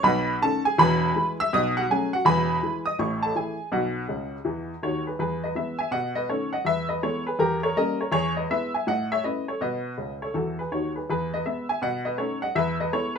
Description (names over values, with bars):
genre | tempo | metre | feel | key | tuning
jazz, stride piano | 163 BPM | 4/4 | swing 63% on 8ths | E major | A4 = 440 Hz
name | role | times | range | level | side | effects
clear upright piano | solo | 0.0-13.2 s | E1 to E6 | -23 LUFS | equal | none
room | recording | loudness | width
moderate small room reverb, RT60 0.5 s | minimal, uncompressed stereo recording | -23 LUFS | side -6 dB against mid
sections
0.0-5.2 A section; 5.2-13.2 B section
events
upright piano fill 4.1-5.2, 10.0-11.1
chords
0.0 B9; 0.8 E; 1.5 B9; 2.3 E; 3.0 A; 3.7 B; 5.2 E; 5.9 B9; 6.7 E; 7.4 Edim7; 8.1 E; 8.9 A; 9.6 B; 11.1 E; 11.8 B9; 12.6 E